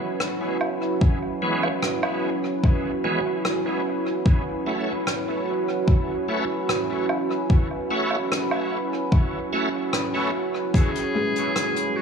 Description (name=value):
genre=ambient dub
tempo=74 BPM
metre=4/4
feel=straight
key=C# minor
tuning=A4 = 440 Hz
part: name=deep dark ambient pad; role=sustained chords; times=0.0-12.0 s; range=C#4 to B4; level=-25 LUFS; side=right 2 dB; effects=chorus, built-in reverb
part: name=soft brush drum kit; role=drums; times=0.2-11.9 s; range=hi-hat, rim click, woodblock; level=-30 LUFS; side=equal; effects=dub echo
part: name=electronic kick drum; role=drums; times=1.0-10.9 s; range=none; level=-19 LUFS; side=equal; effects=overdrive
part: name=bright tonewheel organ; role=stabs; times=1.4-9.7 s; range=E3 to F#4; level=-30 LUFS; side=equal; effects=chorus vibrato, slow rotary speaker, dub echo
part: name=bright clarinet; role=melody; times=10.7-12.0 s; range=F#4 to G#4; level=-25 LUFS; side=left 1 dB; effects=dub echo
part: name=felt-muted upright piano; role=arpeggios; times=11.1-12.0 s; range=G#3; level=-30 LUFS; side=left 2 dB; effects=none
room=moderate concert hall reverb, RT60 2.0 s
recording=small room ambience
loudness=-21 LUFS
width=side -6 dB against mid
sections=0.0-12.0 A section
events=none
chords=0.0 C#m7; 4.3 F#m7; 10.7 C#m7